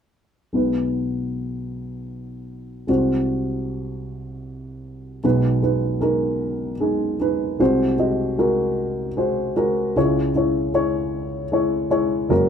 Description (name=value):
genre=folk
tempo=51 BPM (dotted quarters)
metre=6/8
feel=straight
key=B major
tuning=A4 = 442 Hz
part: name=dark baby grand piano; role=solo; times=0.5-12.5 s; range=F#1 to D#5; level=-20 LUFS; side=equal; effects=none
room=moderate small room reverb, RT60 0.5 s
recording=band playing live in one room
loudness=-19 LUFS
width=side -8 dB against mid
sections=0.5-5.2 A section; 5.2-12.5 B section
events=none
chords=0.5 B6; 2.9 G#7/B#; 5.2 B6; 7.6 G#7/B#; 10.0 C#m